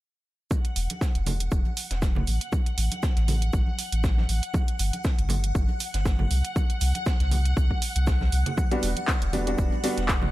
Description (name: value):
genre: deep house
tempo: 119 BPM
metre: 4/4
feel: swing 55% on 16ths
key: E minor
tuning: A4 = 440 Hz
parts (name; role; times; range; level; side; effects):
- compact cocktail drum kit; drums; 0.5-10.2 s; hi-hat, shaker, snare drum; -40 LUFS; right 1 dB; sidechain pumping on hats, high-pass filter on hats, high-pass filter on snare, sidechain pumping on perc, high-pass filter on perc, high-pass filter on room
- electronic kick drum; drums; 0.5-10.2 s; none; -25 LUFS; equal; overdrive
- congas; percussion; 0.5-10.3 s; none; -35 LUFS; right 3 dB; none
- string machine, violins; texture; 0.5-10.3 s; F#5; -36 LUFS; left 1 dB; ensemble chorus, sidechain pumping
- house drum kit; drums; 0.6-10.2 s; handclaps, hi-hat; -31 LUFS; right 2 dB; overdrive
- warm sub bass; bass; 0.8-10.3 s; E1 to C2; -25 LUFS; equal; sidechain pumping
- felt-muted upright piano; stabs; 8.7-10.0 s; G3 to F#4; -28 LUFS; equal; sidechain pumping, tape echo
room: studio ambience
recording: none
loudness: -23 LUFS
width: side -17 dB against mid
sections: 0.5-10.3 A section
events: none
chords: 0.5 Esus2; 2.3 F#m/A; 4.5 N.C.; 8.6 Em9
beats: | 0.51 1.01 1.52 2.02 | 2.53 3.03 3.53 4.04 | 4.54 5.05 5.55 6.05 | 6.56 7.06 7.57 8.07 | 8.58 9.08 9.59 10.09